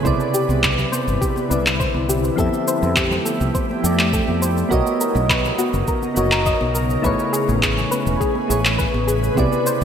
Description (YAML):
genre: sunset chillout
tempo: 103 BPM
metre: 4/4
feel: straight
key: unclear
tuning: A4 = 440 Hz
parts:
  - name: soft electric-piano-like synth keys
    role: accompaniment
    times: 0.0-9.8 s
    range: C3 to E5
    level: -23 LUFS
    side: moving between left 4 dB and right 5 dB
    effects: chorus, auto-pan, ping-pong delay, shimmer reverb
  - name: ethereal airy pad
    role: sustained chords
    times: 0.0-9.8 s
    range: C#3 to B4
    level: -25 LUFS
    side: left 1 dB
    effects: ensemble chorus, built-in reverb, phaser, shimmer reverb
  - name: soft round pluck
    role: arpeggios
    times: 0.0-9.8 s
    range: F#4 to A#5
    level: -25 LUFS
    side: left 2 dB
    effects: analog chorus, vintage 12-bit sampler grit, ping-pong delay, shimmer reverb
  - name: mellow fretless electric bass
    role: bass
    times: 0.1-9.8 s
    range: E1 to F2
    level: -22 LUFS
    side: equal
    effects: tube saturation
  - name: electronic cabasa and handclaps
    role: drums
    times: 0.1-9.8 s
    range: none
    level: -22 LUFS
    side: equal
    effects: gated reverb
  - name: electronic kick drum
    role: drums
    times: 0.1-9.5 s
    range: none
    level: -24 LUFS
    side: equal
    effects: none
  - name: congas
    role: percussion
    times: 0.1-9.8 s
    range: none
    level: -29 LUFS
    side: right 2 dB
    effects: none
room: wet lush hall reverb, RT60 1.8 s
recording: bright 1980s-style digital production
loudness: -16 LUFS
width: side -8 dB against mid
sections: 0.0-9.8 A section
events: none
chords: 0.1 Cmaj9; 2.4 Fmaj9; 4.7 Bmaj9; 7.0 Amaj9